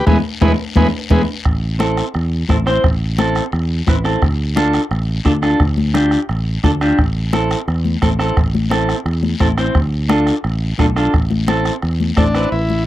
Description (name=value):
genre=latin, cumbia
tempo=174 BPM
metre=4/4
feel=straight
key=A minor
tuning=A4 = 440 Hz
part: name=combo organ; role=melody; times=0.0-1.2, 12.2-12.8 s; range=D4 to B4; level=-18 LUFS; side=left 2 dB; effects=none
part: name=clean electric guitar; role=accompaniment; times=0.1-12.5 s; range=G#3 to C5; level=-17 LUFS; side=equal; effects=none
part: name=fingered electric bass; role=bass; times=0.1-12.9 s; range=A1 to E2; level=-18 LUFS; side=equal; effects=none
part: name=bombo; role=percussion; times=0.1-12.5 s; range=none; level=-18 LUFS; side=equal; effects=none
part: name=congas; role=percussion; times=0.1-12.9 s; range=none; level=-22 LUFS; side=left 5 dB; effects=none
part: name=guiro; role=percussion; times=0.1-12.9 s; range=none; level=-32 LUFS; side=left 6 dB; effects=none
part: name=timbales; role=percussion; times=0.1-1.2 s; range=none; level=-25 LUFS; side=right 8 dB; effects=none
room=light reverb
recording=dry, close 1970s-style studio recording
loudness=-14 LUFS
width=side -14 dB against mid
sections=0.0-1.5 A section; 1.5-12.5 B section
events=band accent 0.1-1.5; drum fill 0.6-1.5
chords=0.1 E; 1.5 Am; 4.2 Dm; 7.0 Am; 9.8 Dm; 11.1 Am